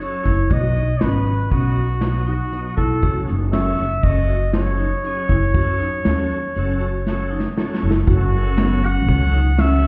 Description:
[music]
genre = progressive instrumental, band music in an uneven meter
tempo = 119 BPM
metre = 5/4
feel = straight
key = F# dorian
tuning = A4 = 437 Hz
[part]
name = clear trumpet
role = melody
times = 0.0-9.9 s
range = F#4 to F#5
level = -27 LUFS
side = equal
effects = plate reverb, delay
[part]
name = bright tonewheel organ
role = accompaniment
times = 0.0-9.8 s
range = B2 to A4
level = -32 LUFS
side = equal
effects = overdrive, chorus vibrato, slow rotary speaker, plate reverb
[part]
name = vibraphone with medium hard mallets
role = arpeggios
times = 0.0-9.9 s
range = B3 to F#4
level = -28 LUFS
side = equal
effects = none
[part]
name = vintage brush drum kit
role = drums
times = 0.0-9.9 s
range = hi-hat, kick drum, snare drum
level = -24 LUFS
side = equal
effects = none
[part]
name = upright bass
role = bass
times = 0.3-9.9 s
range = F#1 to F#2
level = -22 LUFS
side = equal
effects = none
[sound]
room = little or no reverb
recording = heard muffled through a wall, stone room reverb, EQ, faint mains hum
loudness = -19 LUFS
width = mono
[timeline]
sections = 0.0-8.1 A section; 8.1-9.9 B section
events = drum fill 7.1-8.1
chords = 0.0 F#m; 0.5 B; 3.0 F#m

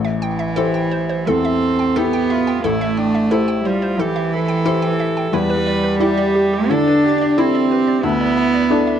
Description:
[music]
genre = neoclassical piano and strings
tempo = 89 BPM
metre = 4/4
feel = rubato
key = A minor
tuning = A4 = 440 Hz
[part]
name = warm cello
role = second line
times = 0.0-9.0 s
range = E3 to D4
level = -18 LUFS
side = right 4 dB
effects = slapback echo
[part]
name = felt-muted upright piano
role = accompaniment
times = 0.0-9.0 s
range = A1 to D5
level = -21 LUFS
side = left 9 dB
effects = none
[part]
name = hollow square pluck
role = arpeggios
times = 0.0-9.0 s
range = D4 to G5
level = -25 LUFS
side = right 4 dB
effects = chorus, slapback echo
[part]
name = rich viola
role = accompaniment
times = 1.3-9.0 s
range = D4 to B4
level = -24 LUFS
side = right 2 dB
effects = none
[sound]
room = little or no reverb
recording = dry, close 1970s-style studio recording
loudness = -15 LUFS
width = side -9 dB against mid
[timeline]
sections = 0.0-9.0 A section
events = none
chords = 0.0 Am7; 5.3 Em7; 8.0 Dsus2

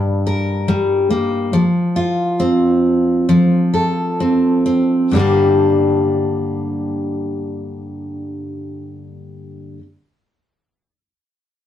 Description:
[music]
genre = pop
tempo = 62-72 BPM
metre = 4/4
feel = straight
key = G minor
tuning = A4 = 441 Hz
[part]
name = picked steel-string acoustic guitar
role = accompaniment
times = 0.0-9.9 s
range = G2 to Bb4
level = -15 LUFS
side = equal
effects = none
[sound]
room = wet small room reverb, RT60 0.5 s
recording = rough rehearsal-room recording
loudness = -14 LUFS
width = side -10 dB against mid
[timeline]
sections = 0.0-5.1 A section; 5.1-9.0 B section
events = slowing down 0.0-5.1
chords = 0.0 Gm; 1.5 F; 5.1 Gm

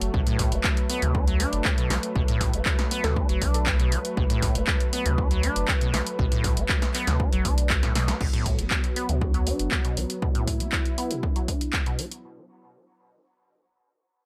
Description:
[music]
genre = acid house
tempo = 119 BPM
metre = 4/4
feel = straight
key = B minor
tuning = A4 = 444 Hz
[part]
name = warm analog pad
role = sustained chords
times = 0.0-12.2 s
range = F#3 to B4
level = -35 LUFS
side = equal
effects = chorus, sidechain pumping
[part]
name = warm sub bass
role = bass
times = 0.0-10.1 s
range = F#1 to D2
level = -29 LUFS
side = equal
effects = tube saturation, sidechain pumping
[part]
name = punchy analog drum machine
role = drums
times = 0.0-12.2 s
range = crash cymbal, handclaps, hi-hat, snare drum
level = -31 LUFS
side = equal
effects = none
[part]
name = acid bass, saw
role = riff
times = 0.1-12.1 s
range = A2 to D4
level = -33 LUFS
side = equal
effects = overdrive, lush chorus, sidechain pumping, dub echo
[part]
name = electronic kick drum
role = drums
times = 0.1-11.8 s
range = none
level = -27 LUFS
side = equal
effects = none
[part]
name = mallet-like synth pluck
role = melody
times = 3.0-3.4 s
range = A4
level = -36 LUFS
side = equal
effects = chorus, digital delay
[sound]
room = little or no reverb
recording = none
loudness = -25 LUFS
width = mono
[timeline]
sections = 0.0-8.2 A section; 8.2-12.2 B section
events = drop 0.0-8.2; drum fill 7.8-8.2; filter sweep on acid bass 8.2-12.2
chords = 0.0 B5

